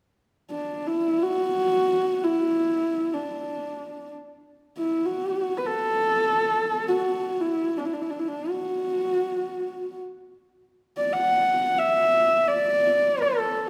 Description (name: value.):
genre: mongolian traditional.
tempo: free time.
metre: none.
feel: none.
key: D gong mode.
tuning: A4 = 439 Hz.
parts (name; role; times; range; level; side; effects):
dark horsehead fiddle; melody; 0.5-13.7 s; D4 to F#5; -25 LUFS; equal; none.
room: wet recital hall reverb, RT60 1.9 s.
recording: none.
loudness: -24 LUFS.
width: mono.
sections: 0.1-13.7 A section.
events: none.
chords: none.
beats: free time.